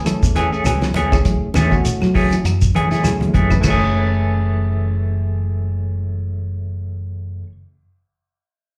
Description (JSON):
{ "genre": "afrobeat", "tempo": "100 BPM", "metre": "4/4", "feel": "swing 56% on 16ths", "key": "F# minor", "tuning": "A4 = 438 Hz", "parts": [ { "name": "reed electric piano", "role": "accompaniment", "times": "0.0-7.5 s", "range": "A3 to B4", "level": "-29 LUFS", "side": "equal", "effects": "fast tremolo, slapback echo" }, { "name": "clean electric guitar", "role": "arpeggios", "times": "0.0-3.8 s", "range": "E3 to F#3", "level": "-26 LUFS", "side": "equal", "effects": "phaser" }, { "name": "fingered electric bass", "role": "bass", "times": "0.1-7.4 s", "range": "F#1 to F#3", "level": "-22 LUFS", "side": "equal", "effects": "none" }, { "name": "cloth-damped thuddy drum kit", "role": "drums", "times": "0.1-3.8 s", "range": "crash cymbal, hi-hat, kick drum, snare drum", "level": "-24 LUFS", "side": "equal", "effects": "none" }, { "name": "claves", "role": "percussion", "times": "0.1-3.8 s", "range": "none", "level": "-34 LUFS", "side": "equal", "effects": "none" }, { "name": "congas", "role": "percussion", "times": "0.1-3.8 s", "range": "none", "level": "-27 LUFS", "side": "equal", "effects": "none" }, { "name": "shekere", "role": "percussion", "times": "0.1-3.8 s", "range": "none", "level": "-27 LUFS", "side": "equal", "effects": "none" }, { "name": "semi-hollow electric guitar", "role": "stabs", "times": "0.4-7.5 s", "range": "E3 to G#4", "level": "-25 LUFS", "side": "equal", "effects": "tremolo, slapback echo" } ], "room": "light reverb", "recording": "live gig heard through the venue's PA, club reverb", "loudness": "-18 LUFS", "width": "mono", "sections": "0.0-3.6 A section; 3.6-6.0 B section", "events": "drum fill 2.7-3.6", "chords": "0.0 F#m9", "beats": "0.06 0.66 | 1.25 1.85 2.45 3.04 | 3.64 4.24 4.84 5.43" }